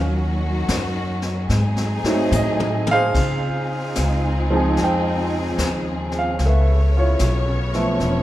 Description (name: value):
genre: jazz ballad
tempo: 74 BPM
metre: 4/4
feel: swing 66% on 8ths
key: unclear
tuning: A4 = 440 Hz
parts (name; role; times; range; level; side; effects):
- warm studio string section; sustained chords; 0.0-8.2 s; C#3 to C#5; -26 LUFS; left 1 dB; none
- upright bass; bass; 0.0-8.2 s; E1 to C#3; -21 LUFS; equal; none
- jazz brush drum kit; drums; 0.7-8.2 s; brushed snare drum, hi-hat, kick drum, ride cymbal, snare drum, toms; -28 LUFS; left 2 dB; none
- warm grand piano; accompaniment; 2.1-8.2 s; E#3 to G#5; -22 LUFS; right 1 dB; none
room: moderate recital hall reverb, RT60 1.3 s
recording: recorded in a church or concert hall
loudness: -18 LUFS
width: side -14 dB against mid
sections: 0.0-3.2 A section; 3.2-8.2 B section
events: drum fill 2.3-3.2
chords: 0.0 D#m7; 1.5 G#7b9; 3.2 C#maj9; 6.4 C#7alt